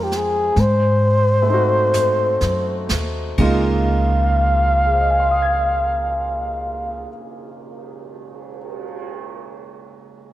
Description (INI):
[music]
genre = jazz ballad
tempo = 41 BPM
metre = 4/4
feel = swing 66% on 8ths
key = Db major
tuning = A4 = 440 Hz
[part]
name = breathy flugelhorn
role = melody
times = 0.0-7.1 s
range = G4 to F5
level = -19 LUFS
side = left 1 dB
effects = none
[part]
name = clear baby grand piano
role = accompaniment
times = 0.0-10.3 s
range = Db3 to Ab6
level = -25 LUFS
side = right 2 dB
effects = none
[part]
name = upright bass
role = bass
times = 0.0-7.0 s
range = Db2 to Ab2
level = -20 LUFS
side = equal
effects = none
[part]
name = jazz brush drum kit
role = drums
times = 0.1-9.0 s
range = brushed snare drum, cymbal swell, hi-hat, kick drum, ride cymbal, snare drum, toms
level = -30 LUFS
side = right 2 dB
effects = none
[sound]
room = light reverb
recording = none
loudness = -16 LUFS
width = side -14 dB against mid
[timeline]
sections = 0.0-3.4 A section; 3.4-9.3 B section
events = slowing down 0.0-3.4; drum fill 1.9-3.4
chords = 0.0 Fm7; 0.6 Ab7b9; 3.4 Db6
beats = 0.56 1.94 | 3.38 4.86 6.31 7.79